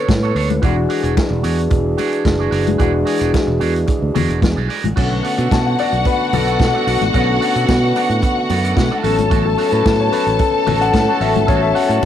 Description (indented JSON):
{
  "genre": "disco",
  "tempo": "110 BPM",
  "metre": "4/4",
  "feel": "straight",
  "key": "B dorian",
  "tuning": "A4 = 440 Hz",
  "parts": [
    { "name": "electric guitar with an envelope filter", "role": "accompaniment", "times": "0.0-12.1 s", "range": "C#4 to D5", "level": "-26 LUFS", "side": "right 12 dB", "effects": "none" },
    { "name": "warm concert grand piano", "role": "accompaniment", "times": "0.0-12.1 s", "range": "D3 to A5", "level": "-21 LUFS", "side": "left 8 dB", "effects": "none" },
    { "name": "dark French horn section", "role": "sustained chords", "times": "0.0-12.1 s", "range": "D3 to C#5", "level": "-22 LUFS", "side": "right 1 dB", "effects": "none" },
    { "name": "fingered electric bass", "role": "bass", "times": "0.1-12.1 s", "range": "E1 to B2", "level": "-19 LUFS", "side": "right 2 dB", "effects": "none" },
    { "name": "vintage drum kit", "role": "drums", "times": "0.1-12.1 s", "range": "crash cymbal, hi-hat, kick drum, snare drum", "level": "-20 LUFS", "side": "right 1 dB", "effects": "cassette tape" },
    { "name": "congas", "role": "percussion", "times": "0.1-12.1 s", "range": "none", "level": "-25 LUFS", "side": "left 8 dB", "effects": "none" },
    { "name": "clear symphonic string section", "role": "second line", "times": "5.0-12.1 s", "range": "F#4 to A5", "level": "-19 LUFS", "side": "left 1 dB", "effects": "none" }
  ],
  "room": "light reverb, small room ambience",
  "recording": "home recording on cassette",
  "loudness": "-14 LUFS",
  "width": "side -10 dB against mid",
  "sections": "0.0-5.0 A section; 5.0-12.1 B section",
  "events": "grand piano solo 5.0-12.1",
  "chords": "0.0 Bm9; 0.6 E9; 5.0 Bm7; 9.0 A6"
}